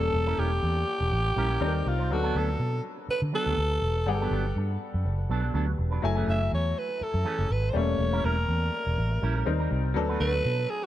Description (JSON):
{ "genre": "pop", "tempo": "122 BPM", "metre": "4/4", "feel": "swing 54% on 16ths", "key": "unclear", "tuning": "A4 = 440 Hz", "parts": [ { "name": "growling alto saxophone", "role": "melody", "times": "0.0-10.9 s", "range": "E#4 to E5", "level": "-30 LUFS", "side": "equal", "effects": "none" }, { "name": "clear grand piano", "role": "accompaniment", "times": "0.0-10.9 s", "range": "F#3 to G#5", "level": "-33 LUFS", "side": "left 4 dB", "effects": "wide subtle chorus" }, { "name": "electric guitar with an envelope filter", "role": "riff", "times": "0.0-10.9 s", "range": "E3 to B#4", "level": "-36 LUFS", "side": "right 5 dB", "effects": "lush chorus" }, { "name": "vintage muted fingered electric bass", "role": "bass", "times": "0.0-10.7 s", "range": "E1 to D3", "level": "-27 LUFS", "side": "equal", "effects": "none" } ], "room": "light reverb", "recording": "none", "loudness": "-25 LUFS", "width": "side -13 dB against mid", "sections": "0.0-10.9 A section", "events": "none", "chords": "0.0 A7b9/E; 1.6 D#6; 2.1 D6; 4.1 Gmaj9; 6.0 F#m9; 7.8 A7b9/E; 9.5 D#6; 10.0 D6", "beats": "| 0.14 0.63 1.12 1.62 | 2.11 2.60 3.09 3.58 | 4.07 4.56 5.05 5.54 | 6.04 6.53 7.02 7.51 | 8.00 8.49 8.98 9.47 | 9.96 10.45" }